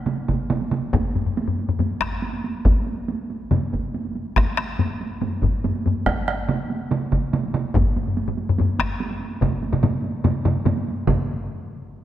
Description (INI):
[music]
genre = japanese traditional, taiko drum ensemble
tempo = 142 BPM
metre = 4/4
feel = straight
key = none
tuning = none
[part]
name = solo taiko drums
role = percussion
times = 0.1-11.3 s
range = none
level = -28 LUFS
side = right 4 dB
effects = none
[part]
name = solo taiko drums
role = percussion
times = 0.1-0.8, 3.5-11.5 s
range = none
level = -25 LUFS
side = right 4 dB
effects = none
[part]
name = taiko ensemble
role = percussion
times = 0.3-11.3 s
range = none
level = -24 LUFS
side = equal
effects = none
[part]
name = taiko ensemble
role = percussion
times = 0.9-11.5 s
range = none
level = -24 LUFS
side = left 3 dB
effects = none
[sound]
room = wet concert hall reverb, RT60 2.5 s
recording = close, detailed microphones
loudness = -20 LUFS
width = side -12 dB against mid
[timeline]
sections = 0.0-11.1 A section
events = speeding up 0.0-12.0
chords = none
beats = 0.07 0.50 | 0.94 1.37 1.80 2.23 | 2.66 3.09 3.51 3.94 | 4.37 4.79 5.22 5.64 | 6.06 6.49 6.91 7.33 | 7.75 8.17 8.59 9.01 | 9.42 9.84 10.25 10.67 | 11.08